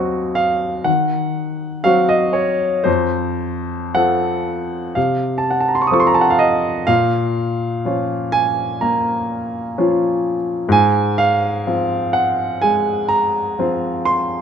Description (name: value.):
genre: classical, romantic character piece for solo piano.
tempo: 62 BPM.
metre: 4/4.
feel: rubato.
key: unclear.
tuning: A4 = 440 Hz.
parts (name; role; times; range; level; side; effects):
clear baby grand piano; solo; 0.0-14.4 s; Eb2 to Eb6; -16 LUFS; equal; none.
room: light reverb.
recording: close, detailed microphones.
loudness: -16 LUFS.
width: side -7 dB against mid.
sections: 0.0-14.4 A section.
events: none.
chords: 0.0 Cdim/Eb; 2.9 F; 6.9 Bbm; 10.7 Fm/Ab.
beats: 0.87 1.86 | 2.87 3.96 4.96 5.92 | 6.89 7.86 8.81 9.77 | 10.71 11.66 12.61 13.58.